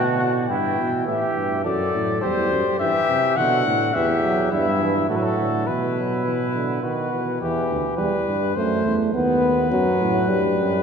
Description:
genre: classical, imitative canzona for brass ensemble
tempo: 104 BPM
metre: 3/4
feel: straight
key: E minor from 4.0 s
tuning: A4 = 440 Hz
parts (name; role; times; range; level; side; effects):
- mellow trumpet; melody; 0.0-10.8 s; G4 to G5; -24 LUFS; left 5 dB; none
- warm flugelhorn; second line; 0.0-7.4 s; E4 to A4; -27 LUFS; right 3 dB; none
- mellow bass trombone; bass; 0.0-10.8 s; D2 to C3; -25 LUFS; right 1 dB; none
- warm euphonium; accompaniment; 0.5-10.8 s; D3 to B3; -23 LUFS; right 1 dB; none
room: wet church reverb, RT60 3.6 s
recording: recorded in a church or concert hall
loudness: -19 LUFS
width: side -6 dB against mid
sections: 0.5-7.4 A section; 7.4-10.8 B section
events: none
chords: 0.5 Em/G; 1.7 D/F#; 2.2 C/E; 3.4 Bm; 4.0 Em; 5.1 Bm7/A (rootless); 5.7 Bsus4; 6.8 B; 7.4 Em; 8.6 F#dim; 9.1 B/D#; 10.3 Gmaj7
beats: | 0.49 1.07 1.65 | 2.23 2.81 3.38 | 3.95 4.52 5.10 | 5.68 6.26 6.84 | 7.42 7.99 8.57 | 9.15 9.72 10.29

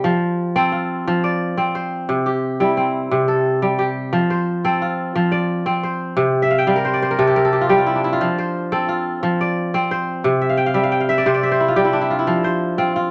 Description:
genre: west african traditional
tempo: 118 BPM (dotted quarters)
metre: 12/8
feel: straight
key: F major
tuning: A4 = 440 Hz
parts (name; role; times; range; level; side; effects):
- kora; solo; 0.0-13.1 s; C3 to G5; -19 LUFS; equal; none
room: moderate club reverb, RT60 0.5 s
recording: none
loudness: -19 LUFS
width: mono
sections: 0.0-12.3 A section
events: kora fill 6.4-8.2, 10.4-12.3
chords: 0.1 F; 2.1 C; 4.1 F; 6.2 C5; 8.2 F; 10.2 C5; 12.3 F5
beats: | 0.05 0.56 1.08 1.59 | 2.10 2.61 3.12 3.63 | 4.14 4.65 5.16 5.67 | 6.17 6.68 7.19 7.70 | 8.21 8.71 9.22 9.73 | 10.24 10.75 11.26 11.77 | 12.28 12.79

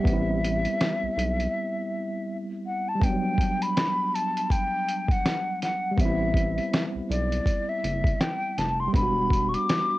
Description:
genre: lo-fi hip hop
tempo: 81 BPM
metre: 4/4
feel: swing 60% on 16ths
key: unclear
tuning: A4 = 439 Hz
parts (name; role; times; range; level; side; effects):
- breathy jazz flute; melody; 0.0-10.0 s; D5 to D6; -28 LUFS; left 1 dB; low-pass filter, cassette tape, plate reverb
- tine electric piano; accompaniment; 0.0-10.0 s; F#3 to F#4; -30 LUFS; right 1 dB; fast stereo tremolo, low-pass filter, cassette tape, plate reverb
- round analog bass; bass; 0.1-1.5, 6.0-9.6 s; E1 to B1; -29 LUFS; equal; none
- lo-fi sampler-style drum kit; drums; 0.1-9.9 s; hi-hat, kick drum, snare drum; -26 LUFS; equal; vintage 12-bit sampler grit, cassette tape
room: light reverb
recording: home recording on cassette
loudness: -23 LUFS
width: side -17 dB against mid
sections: 0.0-3.0 A section; 3.0-10.0 A section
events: break 1.5-3.0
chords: 0.1 Am9; 3.0 Gmaj7/F#; 6.0 Am9; 8.9 Em9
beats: | 0.05 0.79 1.53 2.27 | 3.02 3.76 4.50 5.24 | 5.98 6.72 7.46 8.20 | 8.94 9.68

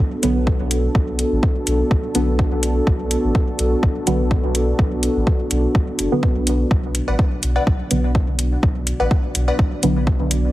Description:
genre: dub techno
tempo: 125 BPM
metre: 4/4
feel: swing 54% on 16ths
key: B minor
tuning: A4 = 440 Hz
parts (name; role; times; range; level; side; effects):
- dark analog pad; sustained chords; 0.0-10.5 s; B3 to D5; -23 LUFS; equal; chorus, sidechain pumping
- soft dub sub bass; bass; 0.0-10.5 s; F#1 to B1; -22 LUFS; equal; sidechain pumping
- deep mellow chord stab; stabs; 0.2-10.0 s; D3 to B3; -23 LUFS; right 1 dB; chorus, phaser, sidechain pumping, dub echo
- electronic hi-hat; drums; 0.2-10.4 s; none; -23 LUFS; equal; overdrive
- electronic kick drum; drums; 0.5-10.2 s; none; -18 LUFS; equal; overdrive
- wavetable chord stab; riff; 7.1-9.5 s; B4 to F#5; -25 LUFS; left 2 dB; sidechain pumping, dub echo
room: light reverb, digital ambience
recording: heavily compressed radio sound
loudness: -16 LUFS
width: side -16 dB against mid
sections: 0.0-10.5 A section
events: none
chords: 0.0 Bm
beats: 0.47 | 0.95 1.43 1.91 2.39 | 2.87 3.35 3.83 4.31 | 4.79 5.27 5.75 6.23 | 6.71 7.19 7.67 8.15 | 8.63 9.11 9.59 10.07

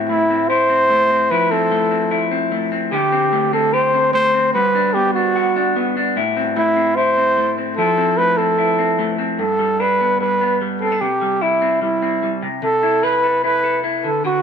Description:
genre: indie pop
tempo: 148 BPM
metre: 4/4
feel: straight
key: G major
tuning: A4 = 440 Hz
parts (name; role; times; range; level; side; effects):
- electric guitar through a small old amp; arpeggios; 0.0-14.4 s; G2 to B4; -20 LUFS; left 2 dB; none
- breathy trumpet; melody; 0.1-14.4 s; E4 to C5; -16 LUFS; right 1 dB; tape echo
room: moderate plate reverb, RT60 3.0 s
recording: none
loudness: -15 LUFS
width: side -7 dB against mid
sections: 0.0-9.4 A section; 9.4-14.4 B section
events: none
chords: 0.0 Am; 1.3 Fmaj7; 2.9 D7sus4; 4.5 Gmaj7; 6.2 Am; 7.8 Fmaj7; 9.4 G; 11.0 C; 12.4 Amadd9/C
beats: 0.09 0.50 0.90 | 1.31 1.71 2.12 2.52 | 2.93 3.33 3.74 4.14 | 4.54 4.95 5.35 5.76 | 6.16 6.57 6.97 7.37 | 7.78 8.18 8.59 8.99 | 9.39 9.80 10.20 10.61 | 11.01 11.42 11.82 12.23 | 12.63 13.04 13.44 13.84 | 14.25

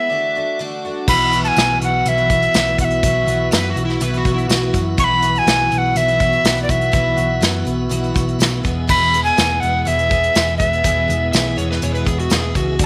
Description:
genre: folk rock and heartland rock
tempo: 123 BPM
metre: 4/4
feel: straight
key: unclear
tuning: A4 = 440 Hz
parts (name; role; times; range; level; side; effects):
- alto recorder; melody; 0.0-12.9 s; D5 to C#6; -19 LUFS; equal; none
- picked twelve-string acoustic guitar; accompaniment; 0.0-12.9 s; E2 to G#4; -26 LUFS; equal; none
- tonewheel organ; sustained chords; 0.0-12.9 s; A3 to E5; -31 LUFS; equal; slow rotary speaker
- hollow-body short-scale picked electric bass; bass; 1.1-12.9 s; E1 to F#2; -24 LUFS; equal; none
- soft brush drum kit; drums; 1.1-12.9 s; crash cymbal, hi-hat, kick drum, snare drum; -22 LUFS; equal; none
- tambourine; percussion; 1.6-12.4 s; none; -33 LUFS; equal; none
- overdriven slide guitar; second line; 3.5-4.7, 11.3-12.8 s; E4 to E5; -26 LUFS; equal; none
room: light reverb, small room ambience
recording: none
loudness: -17 LUFS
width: mono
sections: 0.0-1.1 A section; 1.1-12.9 B section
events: break 0.0-1.1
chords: 0.1 D; 1.1 Bsus4; 8.6 E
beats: 0.10 0.59 | 1.08 1.57 2.06 2.54 | 3.03 3.52 4.01 4.49 | 4.98 5.47 5.96 6.44 | 6.93 7.42 7.91 8.39 | 8.88 9.37 9.86 10.35 | 10.84 11.33 11.81 12.30 | 12.79

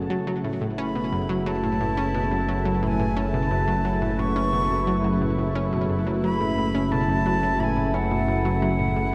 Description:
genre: ambient, sequencer-driven space music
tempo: 88 BPM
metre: 4/4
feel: straight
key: F# minor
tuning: A4 = 440 Hz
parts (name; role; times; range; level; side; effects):
- sweeping resonant pad; sustained chords; 0.0-9.1 s; C#3 to E4; -29 LUFS; equal; chorus, shimmer reverb
- analog drone; bass; 0.0-9.1 s; F#1; -30 LUFS; equal; chorus
- bubbling stepped-filter texture; texture; 0.0-9.1 s; F#4 to F#5; -41 LUFS; equal; chorus, built-in reverb, shimmer reverb
- analog pluck; riff; 0.1-9.0 s; F#2 to C#4; -29 LUFS; equal; chorus, shimmer reverb, tape echo
- bright wooden flute; melody; 0.8-9.1 s; F#5 to C#6; -31 LUFS; equal; shimmer reverb, tape echo
room: wet cathedral reverb, RT60 5.8 s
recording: in a vast, echoing space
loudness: -24 LUFS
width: mono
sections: 0.0-9.1 A section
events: fade-in on analog synth pad 0.0-9.1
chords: 0.0 F#m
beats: | 0.10 0.78 1.46 2.14 | 2.83 3.51 4.19 4.87 | 5.55 6.24 6.92 7.60 | 8.28 8.96

